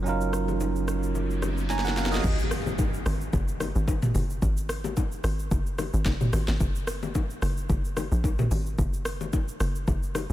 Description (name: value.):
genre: amapiano.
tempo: 110 BPM.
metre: 4/4.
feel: swing 55% on 16ths.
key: unclear.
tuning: A4 = 439 Hz.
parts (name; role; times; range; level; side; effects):
bell-like tine electric piano; accompaniment; 0.0-2.4 s; F#3 to A#5; -30 LUFS; right 6 dB; phaser, low-pass filter.
warm sub bass; bass; 0.0-2.2 s; F#1; -29 LUFS; equal; none.
afro-pop drum kit; drums; 0.1-10.3 s; crash cymbal, hi-hat, kick drum, rim click, shaker, snare drum, toms; -29 LUFS; equal; none.
congas and bongos; percussion; 0.1-10.3 s; none; -35 LUFS; left 6 dB; none.
riser and impact; sound effects; 0.8-4.4 s; none; -35 LUFS; equal; none.
tight log drum bass; bass; 2.2-10.3 s; F#1 to A#1; -28 LUFS; equal; none.
room: light reverb.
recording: none.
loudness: -24 LUFS.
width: side -14 dB against mid.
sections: 0.0-2.2 A section; 2.2-10.3 B section.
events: filter sweep on tine electric piano 0.0-2.2; riser 0.8-2.2; tine electric piano fill 1.4-2.2; drum fill 1.7-2.2; drop 2.2-10.3; impact 2.2-4.4.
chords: 0.0 D#m9/F#; 2.2 F#sus2; 6.6 N.C..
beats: | 0.06 0.60 1.15 1.70 | 2.24 2.79 3.33 3.88 | 4.42 4.97 5.51 6.06 | 6.60 7.15 7.70 8.24 | 8.79 9.33 9.88.